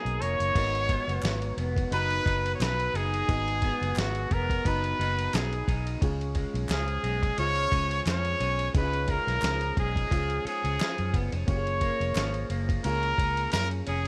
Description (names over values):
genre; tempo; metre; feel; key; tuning
indie pop, bedroom pop; 88 BPM; 4/4; swing 55% on 16ths; unclear; A4 = 440 Hz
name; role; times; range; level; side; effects
clear trumpet; melody; 0.0-14.1 s; F#4 to C#5; -32 LUFS; equal; lush chorus
clear upright piano; accompaniment; 0.0-14.1 s; G#3 to A#5; -41 LUFS; equal; cassette tape
electric guitar through a small old amp; accompaniment; 0.0-14.1 s; G#2 to D#4; -39 LUFS; equal; analog chorus, vibrato effect
vintage muted fingered electric bass; bass; 0.1-14.1 s; E#1 to F#2; -33 LUFS; equal; none
dusty soul sampler-style drum kit; drums; 0.1-14.1 s; crash cymbal, hi-hat, kick drum, ride cymbal, snare drum; -34 LUFS; equal; none
group handclap; percussion; 1.2-13.7 s; none; -44 LUFS; equal; none
room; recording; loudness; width
light reverb; none; -28 LUFS; mono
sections
0.6-14.1 A section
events
none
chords
0.0 Bmaj7; 0.6 G#m7; 6.0 C#; 11.5 F#maj7